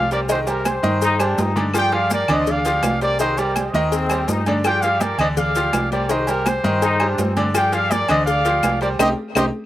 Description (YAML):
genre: latin, salsa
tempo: 166 BPM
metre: 4/4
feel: straight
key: G minor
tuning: A4 = 440 Hz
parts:
  - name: mellow trumpet section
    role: melody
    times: 0.0-9.4 s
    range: G4 to G5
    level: -21 LUFS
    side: equal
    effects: slapback echo
  - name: bright grand piano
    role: accompaniment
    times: 0.0-9.5 s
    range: D3 to Eb5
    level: -23 LUFS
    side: right 1 dB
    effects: slapback echo
  - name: hollow-body short-scale fingered electric bass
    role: bass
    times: 0.0-9.5 s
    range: C2 to G2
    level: -25 LUFS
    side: equal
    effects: none
  - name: cowbell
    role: percussion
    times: 0.1-9.4 s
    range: none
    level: -30 LUFS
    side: left 8 dB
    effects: none
  - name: maracas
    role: percussion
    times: 0.1-9.4 s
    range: none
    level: -34 LUFS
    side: left 6 dB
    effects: none
  - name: agogo bells and timbales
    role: percussion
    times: 0.3-9.4 s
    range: none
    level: -27 LUFS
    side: right 4 dB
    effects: slapback echo
  - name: congas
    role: percussion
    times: 0.3-9.4 s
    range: none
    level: -27 LUFS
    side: equal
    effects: none
  - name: claves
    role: percussion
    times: 0.7-9.4 s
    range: none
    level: -27 LUFS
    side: left 7 dB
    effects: none
  - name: bright trombone section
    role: second line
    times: 1.0-1.7, 3.9-4.6, 6.8-7.5 s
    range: C4 to Eb4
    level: -22 LUFS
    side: left 2 dB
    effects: none
room: little or no reverb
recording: recorded outdoors, with no room sound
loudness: -16 LUFS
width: side -14 dB against mid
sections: 0.0-9.7 A section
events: band accent 9.0-9.7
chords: 0.3 Cm; 1.7 Gm7; 3.2 Cm; 4.6 Gm7; 6.1 Cm; 7.5 G7(no3); 9.0 Cm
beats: | 0.30 0.66 1.02 1.39 | 1.75 2.11 2.47 2.83 | 3.20 3.56 3.92 4.28 | 4.65 5.01 5.37 5.74 | 6.10 6.46 6.82 7.18 | 7.55 7.91 8.27 8.63 | 9.00 9.36